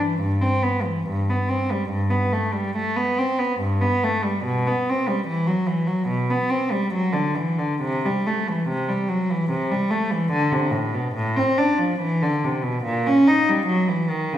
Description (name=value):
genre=classical, baroque-style suite movement for unaccompanied cello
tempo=71 BPM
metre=4/4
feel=rubato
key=G major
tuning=A4 = 440 Hz
part: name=rich cello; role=solo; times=0.0-14.4 s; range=G2 to D#4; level=-20 LUFS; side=equal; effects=none
room=wet recital hall reverb, RT60 1.6 s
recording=heard from further back in the room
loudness=-20 LUFS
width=side -11 dB against mid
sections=0.0-14.4 A section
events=none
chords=none